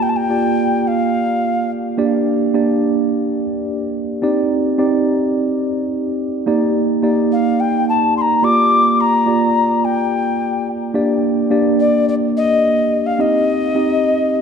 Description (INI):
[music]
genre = pop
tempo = 107 BPM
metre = 4/4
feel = straight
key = Bb major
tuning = A4 = 441 Hz
[part]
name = breathy alto ocarina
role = melody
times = 0.0-1.7, 7.3-14.4 s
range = D5 to D6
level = -17 LUFS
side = left 3 dB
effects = digital delay
[part]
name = mellow tine electric piano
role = accompaniment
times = 0.0-14.4 s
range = Bb3 to Eb5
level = -16 LUFS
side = right 2 dB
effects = slow stereo tremolo
[sound]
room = wet lush hall reverb, RT60 1.7 s, small room ambience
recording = dark, warm production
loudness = -14 LUFS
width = side -6 dB against mid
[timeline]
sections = 0.0-14.4 A section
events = none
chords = 0.0 Bb6; 2.0 Gm; 4.2 Cmadd9; 6.5 Ebmaj7; 8.4 Bb6; 11.0 Gm; 13.2 Cm